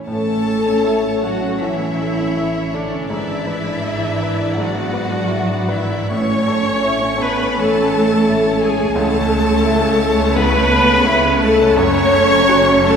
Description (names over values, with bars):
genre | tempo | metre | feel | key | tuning
classical, romantic movement for piano and orchestra | 71-89 BPM | 4/4 | rubato | A major | A4 = 440 Hz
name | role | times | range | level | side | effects
clear grand piano | melody | 0.0-13.0 s | C#2 to B4 | -20 LUFS | equal | none
rich chamber violin section | melody | 0.1-13.0 s | C#5 to D5 | -31 LUFS | left 1 dB | none
rich chamber violin section | second line | 0.1-13.0 s | D5 to C#6 | -24 LUFS | left 2 dB | none
rich chamber viola section | accompaniment | 0.1-13.0 s | D4 to C#5 | -18 LUFS | left 1 dB | none
warm French horn section | sustained chords | 0.1-13.0 s | E3 to D4 | -30 LUFS | right 1 dB | none
rich chamber cello section | bass | 0.1-13.0 s | D3 to C#4 | -22 LUFS | right 1 dB | none
rich studio double bass section | bass | 0.1-13.0 s | F#1 to C#2 | -25 LUFS | right 2 dB | none
room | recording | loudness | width
wet church reverb, RT60 3.2 s | recorded in a church or concert hall | -14 LUFS | side -7 dB against mid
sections
0.1-13.0 A section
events
none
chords
0.1 A; 3.1 E7/G#; 6.1 A; 9.0 A/C#; 11.8 F#m